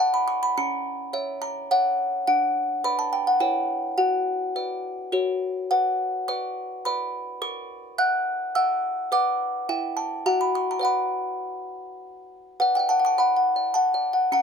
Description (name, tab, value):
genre	classical, lullaby for music box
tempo	105 BPM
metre	3/4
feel	straight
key	B minor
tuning	A4 = 441 Hz
part	music box	solo	0.0-14.4 s	C#4 to F#6	-22 LUFS	equal	none
room	little or no reverb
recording	close, detailed microphones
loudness	-22 LUFS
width	side -6 dB against mid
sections	0.0-12.6 A section; 12.6-14.4 B section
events	none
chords	0.0 Bm; 0.6 F#7/C#; 2.3 Bm/D; 3.4 C#m7b5/E; 4.0 Bm/F#; 5.1 F#; 5.7 Bm; 7.4 F#7/A#; 9.1 Bm; 9.7 Em; 10.3 F#7; 10.8 Bm